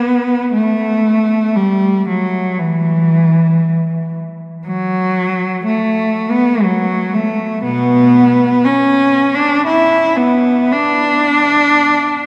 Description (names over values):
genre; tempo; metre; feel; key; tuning
classical, free, expressive piece for unaccompanied cello; 58 BPM; 3/4; rubato; unclear; A4 = 439 Hz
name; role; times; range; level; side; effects
rich cello; solo; 0.0-12.3 s; B2 to E4; -14 LUFS; equal; none
room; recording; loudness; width
wet cathedral reverb, RT60 4.6 s; heard from further back in the room; -14 LUFS; mono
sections
0.0-12.3 A section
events
none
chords
none